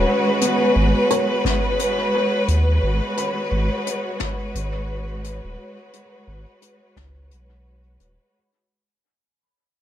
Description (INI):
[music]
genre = ambient dub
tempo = 87 BPM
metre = 4/4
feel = swing 59% on 16ths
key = G# minor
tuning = A4 = 440 Hz
[part]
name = clear symphonic string section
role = sustained chords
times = 0.0-8.3 s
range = G#3 to C#5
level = -21 LUFS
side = equal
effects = none
[part]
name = felt-muted upright piano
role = arpeggios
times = 0.0-8.4 s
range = B3 to B5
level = -29 LUFS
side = right 2 dB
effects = low-pass filter, dub echo
[part]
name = round analog bass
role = bass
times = 0.0-8.2 s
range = D#1 to D#2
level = -21 LUFS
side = equal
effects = none
[part]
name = jazz brush drum kit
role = drums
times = 0.4-8.2 s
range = hi-hat, snare drum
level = -29 LUFS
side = left 5 dB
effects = dub echo
[part]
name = filtered dub chord stab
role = stabs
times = 1.1-1.3 s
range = B3 to C#5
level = -29 LUFS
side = right 1 dB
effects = none
[part]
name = electronic kick drum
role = drums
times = 1.5-7.1 s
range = none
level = -27 LUFS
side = equal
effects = overdrive
[sound]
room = wet spring reverb, RT60 1.4 s, small room ambience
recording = none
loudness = -18 LUFS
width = side -11 dB against mid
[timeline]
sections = 0.0-8.3 A section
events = fade-out 0.0-8.3; filter sweep on analog synth bass 0.0-8.3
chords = 0.0 G#m11